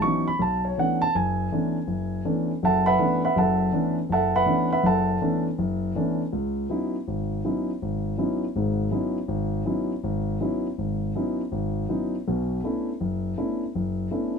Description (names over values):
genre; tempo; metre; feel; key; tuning
jazz; 162 BPM; 4/4; swing 64% on 8ths; C# phrygian; A4 = 441 Hz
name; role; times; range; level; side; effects
dark grand piano; solo; 0.0-14.4 s; F#1 to C#6; -23 LUFS; equal; none
room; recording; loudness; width
light reverb; minimal, uncompressed stereo recording; -23 LUFS; side -6 dB against mid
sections
0.0-6.3 A section; 6.3-14.4 B section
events
none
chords
0.4 Bm11; 6.3 C#m11; 12.3 Bm11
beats
0.02 | 0.39 0.76 1.14 1.51 | 1.88 2.25 2.62 2.99 | 3.36 3.73 4.11 4.47 | 4.85 5.22 5.59 5.96 | 6.33 6.70 7.07 7.44 | 7.81 8.18 8.55 8.93 | 9.29 9.67 10.04 10.41 | 10.78 11.15 11.52 11.89 | 12.26 12.63 13.00 13.37 | 13.74 14.11